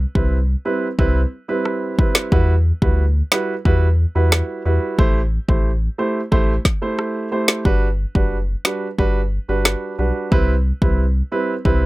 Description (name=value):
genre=dancehall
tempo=90 BPM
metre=4/4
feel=straight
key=unclear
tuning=A4 = 439 Hz
part: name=saturated sub bass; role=bass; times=0.0-11.9 s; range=F#1 to E2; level=-18 LUFS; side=equal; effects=none
part: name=warm grand piano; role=accompaniment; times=0.1-11.9 s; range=G3 to C5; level=-21 LUFS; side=right 2 dB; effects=sidechain pumping
part: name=deep house drum kit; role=drums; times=0.2-11.8 s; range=finger snaps, kick drum, rim click, snare drum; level=-17 LUFS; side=equal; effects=none
room=little or no reverb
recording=none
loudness=-16 LUFS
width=side -19 dB against mid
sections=0.0-11.9 A section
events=hi-hats muted 5.0-7.7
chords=0.0 Cmaj7; 2.3 Emadd9; 5.0 Am7; 7.7 Gmaj7; 10.3 Cmaj7